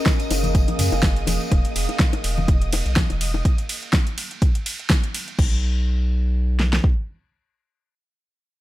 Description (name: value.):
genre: deep house.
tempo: 124 BPM.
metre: 4/4.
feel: swing 55% on 16ths.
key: unclear.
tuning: A4 = 440 Hz.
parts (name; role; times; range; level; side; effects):
deep dark ambient pad; sustained chords; 0.0-1.5 s; A#3 to E#5; -29 LUFS; equal; chorus, built-in reverb, sidechain pumping.
analog string pad; texture; 0.0-3.5 s; D#5 to D#6; -34 LUFS; right 1 dB; ensemble chorus.
deep house drum kit; drums; 0.1-7.0 s; kick drum, snare drum; -19 LUFS; equal; small room ambience.
deep house drum kit; drums; 0.1-5.5 s; crash cymbal, hi-hat, ride cymbal, snare drum; -25 LUFS; equal; small room ambience.
bongos and congas; percussion; 0.1-3.4 s; none; -28 LUFS; left 5 dB; none.
tambourine; percussion; 0.1-1.5 s; none; -33 LUFS; left 3 dB; none.
round analog bass; bass; 0.3-6.8 s; E1 to F#2; -22 LUFS; equal; none.
room: little or no reverb.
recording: none.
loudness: -18 LUFS.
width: side -16 dB against mid.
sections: 0.0-5.4 A section; 5.4-8.6 B section.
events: drop 0.0-5.4.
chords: 0.0 F#maj9; 1.3 Emaj9; 3.5 N.C..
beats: 0.06 0.55 1.03 | 1.52 2.00 2.48 2.97 | 3.45 3.94 4.42 4.90 | 5.39 5.87 6.36 6.84.